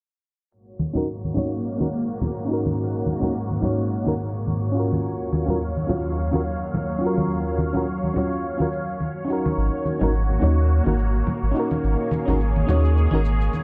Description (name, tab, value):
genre	sunset chillout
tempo	106 BPM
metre	4/4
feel	swing 55% on 16ths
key	unclear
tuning	A4 = 440 Hz
part	lush unison pad	sustained chords	0.9-13.6 s	Eb2 to F5	-29 LUFS	equal	chorus, phaser
part	shaker	drums	0.5-13.6 s	none	-64 LUFS	equal	none
part	congas	percussion	0.8-13.6 s	none	-30 LUFS	equal	none
part	mellow FM electric piano	accompaniment	0.9-13.2 s	Db4 to Db5	-28 LUFS	equal	chorus, low-pass filter, digital delay
part	warm sub bass	bass	9.6-13.5 s	Ab1 to Eb2	-22 LUFS	equal	none
room	moderate lush hall reverb, RT60 2.0 s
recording	low-pass filter, lossy compression artefacts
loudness	-23 LUFS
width	mono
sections	0.5-13.6 A section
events	filter sweep on FM electric piano 0.5-13.6; filter sweep 0.5-13.6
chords	0.5 Ab9sus4; 5.0 Ebm9; 9.6 Ab9sus4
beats	| 0.52 1.08 1.65 2.21 | 2.78 3.35 3.91 4.48 | 5.04 5.61 6.17 6.74 | 7.31 7.87 8.44 9.01 | 9.57 10.14 10.70 11.27 | 11.84 12.40 12.97 13.53